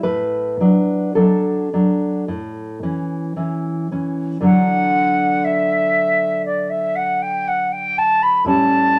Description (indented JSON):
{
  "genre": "romantic duo for flute and classical guitar",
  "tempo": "53-62 BPM",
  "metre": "4/4",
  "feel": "rubato",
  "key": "D major",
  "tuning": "A4 = 440 Hz",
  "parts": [
    { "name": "nylon-string guitar", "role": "accompaniment", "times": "0.0-9.0 s", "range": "A2 to B4", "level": "-21 LUFS", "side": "equal", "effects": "none" },
    { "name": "silver concert flute", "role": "melody", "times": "4.4-9.0 s", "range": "D5 to B5", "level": "-19 LUFS", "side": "equal", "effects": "none" }
  ],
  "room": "moderate studio reverb, RT60 0.9 s",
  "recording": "none",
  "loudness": "-18 LUFS",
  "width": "mono",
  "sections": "0.0-4.4 A section; 4.4-9.0 B section",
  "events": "none",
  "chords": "0.0 D/A; 2.3 A; 4.4 D; 8.5 A7"
}